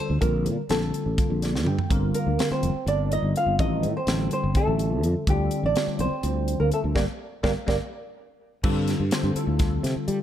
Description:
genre	electric jazz fusion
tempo	249 BPM (eighths)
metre	7/8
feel	straight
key	G minor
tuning	A4 = 440 Hz
part	flamenco guitar	melody	0.0-7.8 s	G4 to F5	-29 LUFS	equal	none
part	bell-like tine electric piano	accompaniment	0.0-10.2 s	D3 to G5	-29 LUFS	left 2 dB	analog chorus
part	fretless electric bass	bass	0.1-10.2 s	F1 to G3	-25 LUFS	equal	wide subtle chorus
part	crisp fusion drum kit	drums	0.2-10.2 s	crash cymbal, hi-hat, kick drum, snare drum, toms	-27 LUFS	equal	none
part	trombone with cup mute	second line	2.2-7.8 s	G3 to F4	-32 LUFS	right 5 dB	none
room	light reverb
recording	dark, warm production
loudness	-22 LUFS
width	side -11 dB against mid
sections	0.0-8.6 A section; 8.6-10.2 B section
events	tine electric piano fill 1.2-1.9; drum fill 1.5-1.9, 7.9-8.6; band accent 7.0-8.6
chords	0.2 Bbmaj9; 1.9 Gm7; 3.6 Am7b5; 5.3 Dm7; 7.0 Gm; 8.6 G13sus4

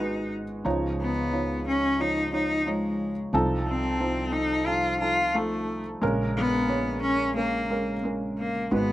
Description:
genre	folk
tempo	89 BPM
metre	4/4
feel	straight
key	unclear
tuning	A4 = 439 Hz
part	bright cello	melody	0.0-8.9 s	Ab3 to F4	-26 LUFS	left 1 dB	none
part	felt-muted upright piano	accompaniment	0.0-8.9 s	Ab1 to Db5	-28 LUFS	right 1 dB	none
part	upright bass	bass	0.0-8.9 s	Ab1 to Db2	-35 LUFS	right 1 dB	none
room	little or no reverb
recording	recorded outdoors, with no room sound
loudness	-24 LUFS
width	side -15 dB against mid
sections	0.0-8.9 A section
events	none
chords	0.0 Abm7; 0.7 Dbadd9; 3.3 F7/C; 6.0 Bbm7

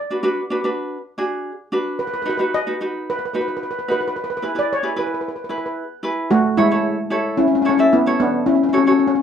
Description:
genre	calypso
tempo	111 BPM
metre	4/4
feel	straight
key	A major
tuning	A4 = 439 Hz
part	ukulele	accompaniment	0.1-9.1 s	D4 to E5	-22 LUFS	right 1 dB	none
part	steel pan	melody	2.0-9.2 s	G#3 to D#5	-18 LUFS	left 1 dB	none
room	wet small room reverb, RT60 0.6 s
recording	dark, warm production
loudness	-17 LUFS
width	side -8 dB against mid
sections	0.0-6.3 A section; 6.3-9.2 B section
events	none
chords	0.0 Bm; 2.0 B; 4.2 E; 6.3 A; 8.5 F#m

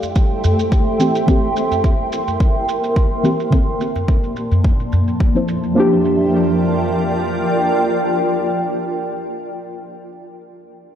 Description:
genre	organic downtempo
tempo	107 BPM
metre	4/4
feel	swing 54% on 16ths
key	G dorian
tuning	A4 = 440 Hz
part	deep mellow chord stab	accompaniment	0.0-10.5 s	D3 to C5	-19 LUFS	equal	chorus, sidechain pumping, tape echo
part	granular cloud pad	sustained chords	0.0-8.8 s	F4 to C6	-19 LUFS	equal	built-in reverb, sidechain pumping
part	shaker	drums	0.0-5.7 s	none	-36 LUFS	right 5 dB	low-pass filter on perc, studio reverb, low-pass filter on snare, tape echo
part	udu	percussion	0.0-5.0 s	none	-19 LUFS	equal	none
part	electronic kick drum	drums	0.2-5.3 s	none	-16 LUFS	equal	overdrive, studio reverb
room	moderate echo chamber reverb, RT60 2.0 s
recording	echo-heavy mix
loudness	-15 LUFS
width	side -9 dB against mid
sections	0.0-5.8 A section; 5.8-8.0 B section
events	filter sweep on drum 0.0-5.8; filter sweep on synth stab 0.0-5.8; filter sweep on ambient pad 0.0-5.8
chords	0.0 Am7; 1.3 C7; 3.5 Bbmaj9; 4.6 Fmaj7; 5.8 Gm7

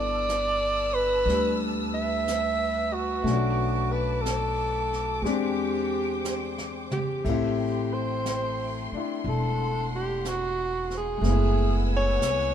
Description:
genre	jazz ballad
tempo	60 BPM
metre	4/4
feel	swing 68% on 8ths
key	unclear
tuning	A4 = 440 Hz
part	breathy alto saxophone	melody	0.0-12.5 s	F#4 to E5	-27 LUFS	right 1 dB	none
part	clear baby grand piano	accompaniment	0.0-12.5 s	G3 to A4	-31 LUFS	left 6 dB	none
part	warm studio string section	sustained chords	0.0-12.5 s	A3 to E6	-36 LUFS	equal	none
part	upright bass	bass	0.0-12.5 s	E1 to E2	-29 LUFS	right 1 dB	none
part	jazz brush drum kit	drums	0.3-12.5 s	brushed snare drum, hi-hat, kick drum, ride cymbal, snare drum, toms	-36 LUFS	right 2 dB	none
room	light reverb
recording	minimal, uncompressed stereo recording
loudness	-24 LUFS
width	side -9 dB against mid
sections	0.0-12.5 A section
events	drum fill 6.2-7.2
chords	0.0 G69; 3.3 Bm7; 5.2 E7alt; 7.2 Am7; 11.2 F#m11

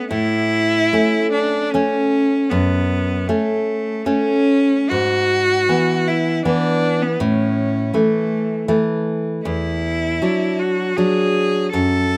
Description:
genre	romantic duo for cello and classical guitar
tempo	68-82 BPM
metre	3/4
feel	rubato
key	A major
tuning	A4 = 440 Hz
part	clear cello	melody	0.0-12.2 s	A3 to A4	-21 LUFS	equal	none
part	nylon-string guitar	accompaniment	0.0-12.2 s	E2 to D4	-21 LUFS	equal	none
room	little or no reverb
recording	recorded outdoors, with no room sound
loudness	-18 LUFS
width	mono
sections	0.1-12.2 A section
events	none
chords	0.1 A; 2.5 F#m; 4.9 E/G#; 7.2 A; 9.4 E9

